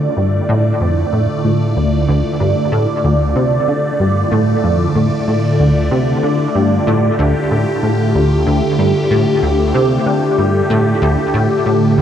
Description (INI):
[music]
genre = ambient, sequencer-driven space music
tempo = 94 BPM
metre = 4/4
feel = straight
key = D minor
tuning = A4 = 440 Hz
[part]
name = phased analog pad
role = sustained chords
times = 0.0-12.0 s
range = D3 to D5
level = -16 LUFS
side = equal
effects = phaser, chorus
[part]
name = plucky analog bass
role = riff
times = 0.0-12.0 s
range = D2 to D3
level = -15 LUFS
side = equal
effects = ensemble chorus, analog delay
[sound]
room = moderate plate reverb, RT60 3.5 s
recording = dreamy mix soaked in reverb, faint mains hum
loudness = -12 LUFS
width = side -9 dB against mid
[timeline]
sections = 0.0-12.0 A section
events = none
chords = 0.0 Dmadd9